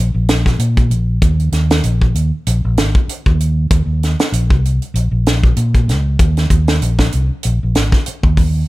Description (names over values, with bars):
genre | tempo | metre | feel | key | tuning
afrobeat | 96 BPM | 4/4 | swing 56% on 16ths | unclear | A4 = 440 Hz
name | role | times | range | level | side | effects
fingered electric bass | bass | 0.0-8.6 s | Ab1 to Bb2 | -14 LUFS | equal | none
tight funk drum kit | drums | 0.3-8.5 s | hi-hat, kick drum, snare drum | -15 LUFS | equal | none
room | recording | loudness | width
little or no reverb | none | -12 LUFS | side -19 dB against mid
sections
0.0-8.7 A section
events
none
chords
none